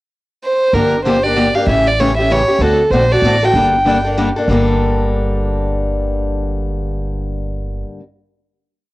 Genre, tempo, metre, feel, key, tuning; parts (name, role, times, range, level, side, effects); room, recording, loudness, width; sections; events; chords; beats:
acoustic string swing (jazz manouche); 192 BPM; 3/4; swing 59% on 8ths; G minor; A4 = 440 Hz
rich violin; melody; 0.4-4.2 s; A4 to G5; -14 LUFS; right 1 dB; cassette tape, plate reverb
picked steel-string acoustic guitar; accompaniment; 0.7-8.0 s; G2 to A4; -17 LUFS; left 2 dB; cassette tape, plate reverb
upright bass; bass; 0.7-7.8 s; G1 to D2; -19 LUFS; equal; transformer saturation
light reverb; home recording on cassette; -13 LUFS; side -18 dB against mid
0.0-0.7 pickup bar; 0.7-4.5 A section; 4.5-6.4 final chord
0.0 N.C.; 0.7 Gm7; 1.7 A7; 2.6 D7; 3.5 Gmadd9
0.11 0.42 | 0.73 1.05 1.36 | 1.67 1.98 2.29 | 2.61 2.92 3.23 | 3.54 3.86 4.17 | 4.48 4.80 5.11 | 5.42 5.73 6.05